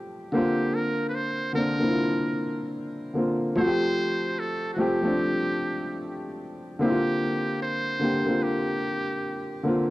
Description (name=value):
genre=hip hop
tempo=74 BPM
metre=4/4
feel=swing 62% on 16ths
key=unclear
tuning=A4 = 440 Hz
part: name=warm upright piano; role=accompaniment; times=0.0-9.9 s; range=D3 to G4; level=-25 LUFS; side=equal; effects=cassette tape, low-pass filter
part: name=trumpet with metal mute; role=melody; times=0.3-9.6 s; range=F#4 to C5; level=-30 LUFS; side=right 1 dB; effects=low-pass filter
room=wet small room reverb, RT60 0.6 s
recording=dark, warm production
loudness=-24 LUFS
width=side -17 dB against mid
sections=0.0-9.9 A section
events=none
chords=0.3 C9sus4; 3.6 G9sus4; 6.8 C9sus4